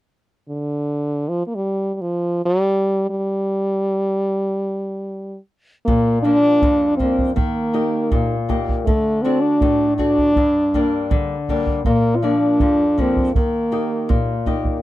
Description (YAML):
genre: andean folk, Andean ensemble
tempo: 80 BPM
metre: 2/4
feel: straight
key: unclear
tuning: A4 = 438 Hz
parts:
  - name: warm French horn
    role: melody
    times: 0.5-14.4 s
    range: D3 to F4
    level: -18 LUFS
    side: equal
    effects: none
  - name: nylon-string guitar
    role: accompaniment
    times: 5.9-14.8 s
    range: F2 to G4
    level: -22 LUFS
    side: left 3 dB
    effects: none
  - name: bombo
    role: percussion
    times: 5.9-14.8 s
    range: none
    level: -22 LUFS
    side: right 1 dB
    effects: none
room: little or no reverb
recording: dry, close 1970s-style studio recording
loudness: -16 LUFS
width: side -15 dB against mid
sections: 0.0-5.9 A section; 5.9-14.8 B section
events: none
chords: 0.0 N.C.; 5.9 Bb; 7.4 Eb; 8.9 D; 10.4 Gm; 11.9 Bb; 13.4 Eb